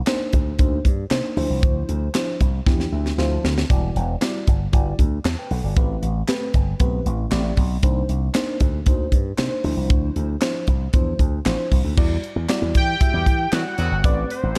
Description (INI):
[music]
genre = early-eighties boogie funk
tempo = 116 BPM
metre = 4/4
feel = straight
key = unclear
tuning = A4 = 440 Hz
[part]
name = FM electric piano with soft pad layer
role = accompaniment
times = 0.1-14.6 s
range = F3 to A5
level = -30 LUFS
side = equal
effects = chorus, tremolo
[part]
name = tight funk drum kit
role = drums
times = 0.1-14.6 s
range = crash cymbal, handclaps, hi-hat, kick drum, snare drum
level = -23 LUFS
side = equal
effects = none
[part]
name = slap bass with an envelope filter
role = bass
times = 0.3-14.5 s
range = E1 to E3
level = -25 LUFS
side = equal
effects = none
[part]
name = fat analog lead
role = melody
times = 12.8-14.6 s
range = C5 to G5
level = -26 LUFS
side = equal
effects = chorus, phaser
[part]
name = mellow horn section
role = second line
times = 13.1-13.9 s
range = D3 to G4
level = -34 LUFS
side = equal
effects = none
[sound]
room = light reverb, studio ambience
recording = none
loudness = -21 LUFS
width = mono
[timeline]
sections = 0.0-12.0 A section; 12.0-14.6 B section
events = drum fill 2.7-3.7; FM electric piano fill 2.7-3.7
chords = 0.0 Cm9; 1.4 Dm9; 3.7 Em9; 5.8 Am9; 7.8 Cm9; 9.6 Dm9; 12.0 Em9; 14.0 Am9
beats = 0.08 0.59 1.11 | 1.63 2.14 2.66 3.18 | 3.70 4.21 4.73 5.25 | 5.76 6.28 6.80 7.32 | 7.83 8.35 8.87 9.39 | 9.90 10.42 10.94 11.46 | 11.97 12.49 13.01 13.52 | 14.04 14.56